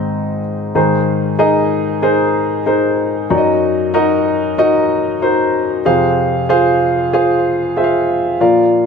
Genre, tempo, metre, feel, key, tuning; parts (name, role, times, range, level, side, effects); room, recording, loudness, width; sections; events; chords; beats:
pop; 94 BPM; 4/4; straight; Ab mixolydian; A4 = 440 Hz
dark baby grand piano; solo; 0.0-8.9 s; F2 to F5; -12 LUFS; left 1 dB; tape echo
moderate large studio reverb, RT60 0.9 s; -12 LUFS; side -6 dB against mid
0.8-8.9 A section
0.0 Ab; 0.8 Abadd9; 3.3 Ebm/Gb; 5.9 Fm
0.12 | 0.76 1.39 2.03 2.67 | 3.31 3.94 4.58 5.22 | 5.86 6.49 7.13 7.77 | 8.40